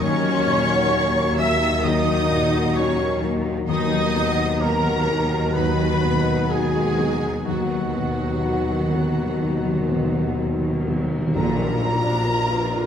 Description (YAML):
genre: cinematic, emotional film score for orchestra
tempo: 64 BPM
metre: 4/4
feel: rubato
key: unclear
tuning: A4 = 440 Hz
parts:
  - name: rich symphonic violin section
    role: melody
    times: 0.0-12.9 s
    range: F#5 to Fb6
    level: -30 LUFS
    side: left 2 dB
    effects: none
  - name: mellow cor anglais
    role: second line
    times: 0.0-10.3 s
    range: F#4 to Fb5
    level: -30 LUFS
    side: right 4 dB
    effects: none
  - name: rich symphonic violin section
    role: second line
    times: 0.0-12.9 s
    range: F#4 to Fb5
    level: -33 LUFS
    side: equal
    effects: none
  - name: small flute group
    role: second line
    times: 0.0-12.9 s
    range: F#4 to Bb5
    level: -29 LUFS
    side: left 1 dB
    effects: none
  - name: felt-muted upright piano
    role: accompaniment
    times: 0.0-12.9 s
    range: Bb1 to D5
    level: -27 LUFS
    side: left 2 dB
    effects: none
  - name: rich symphonic viola section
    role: accompaniment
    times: 0.0-12.9 s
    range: D3 to Fb5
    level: -29 LUFS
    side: right 1 dB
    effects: none
  - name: dark French horn section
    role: sustained chords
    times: 0.0-12.9 s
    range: B2 to Gb4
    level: -28 LUFS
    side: left 6 dB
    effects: none
  - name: concert harp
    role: arpeggios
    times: 0.0-12.9 s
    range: Bb2 to Db6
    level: -29 LUFS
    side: left 7 dB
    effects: none
  - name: rich symphonic cello section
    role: bass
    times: 0.0-12.1 s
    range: Bb2 to Eb3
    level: -28 LUFS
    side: right 3 dB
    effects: none
  - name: rich symphonic double bass section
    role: bass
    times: 0.0-12.1 s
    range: Bb1 to Eb2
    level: -28 LUFS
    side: right 2 dB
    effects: none
  - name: timpani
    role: percussion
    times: 3.7-12.7 s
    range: Bb2 to D#3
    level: -28 LUFS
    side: right 2 dB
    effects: none
  - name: cymbal swell and tam-tam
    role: percussion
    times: 7.5-12.9 s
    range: none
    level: -34 LUFS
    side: left 1 dB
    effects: none
room: moderate recital hall reverb, RT60 1.5 s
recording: none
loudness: -19 LUFS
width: side -8 dB against mid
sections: 0.0-11.3 A section; 11.3-12.9 B section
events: timpani fill 3.7-11.3; band accent 11.3-12.3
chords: 0.0 Gb7/Eb; 3.7 Bmaj7/D#; 11.3 Bb